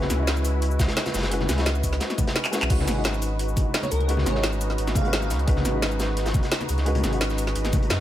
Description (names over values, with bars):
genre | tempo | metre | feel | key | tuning
liquid drum and bass | 173 BPM | 4/4 | straight | unclear | A4 = 440 Hz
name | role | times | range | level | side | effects
felt-muted upright piano | accompaniment | 0.0-8.0 s | Ab3 to Eb5 | -30 LUFS | left 1 dB | tape echo
warm analog pad | sustained chords | 0.0-8.0 s | Eb4 to Cb5 | -33 LUFS | equal | chorus
warm sub bass | bass | 0.0-8.0 s | Gb1 to Gb2 | -25 LUFS | equal | none
crunchy breakbeat drum kit | drums | 0.0-8.0 s | hi-hat, snare drum | -32 LUFS | equal | high-pass filter on hats, high-pass filter on snare, high-pass filter on room
congas | percussion | 0.0-7.8 s | none | -32 LUFS | left 2 dB | none
drum and bass drum kit | drums | 0.1-8.0 s | cabasa, crash cymbal, handclaps, hi-hat, snare drum | -28 LUFS | equal | overdrive
electronic kick drum | drums | 0.8-7.8 s | none | -24 LUFS | equal | overdrive
airy dreamy lead | melody | 3.8-5.3 s | Bb4 to F5 | -33 LUFS | right 2 dB | chorus, cassette tape, tape echo
room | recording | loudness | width
light reverb, small room reverb | none | -21 LUFS | side -12 dB against mid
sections
0.0-8.0 A section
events
drum fill 2.4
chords
0.0 Gb9sus4; 2.7 Db9sus4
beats
0.27 0.62 0.97 | 1.31 1.66 2.01 2.35 | 2.70 3.05 3.39 3.74 | 4.09 4.43 4.78 5.13 | 5.47 5.82 6.17 6.52 | 6.86 7.21 7.56 7.90